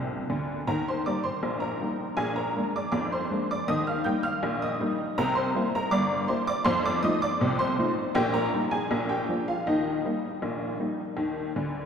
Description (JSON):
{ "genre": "ragtime piano", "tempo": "80 BPM", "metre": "2/4", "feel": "straight", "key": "Eb major", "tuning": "A4 = 439 Hz", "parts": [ { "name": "honky-tonk upright piano", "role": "solo", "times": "0.0-11.8 s", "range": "F1 to G6", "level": "-25 LUFS", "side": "equal", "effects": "none" } ], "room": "wet cathedral reverb, RT60 5.3 s", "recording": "in a vast, echoing space", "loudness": "-25 LUFS", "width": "side -7 dB against mid", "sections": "0.0-11.9 A section", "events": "honky-tonk piano fill 0.0-0.7, 11.5-11.9", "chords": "0.0 Bb (rootless); 0.7 Eb; 2.2 Bb7; 3.7 Eb; 5.2 C7; 6.7 F7; 8.2 Eb/Bb; 8.9 Bb7; 9.7 Eb" }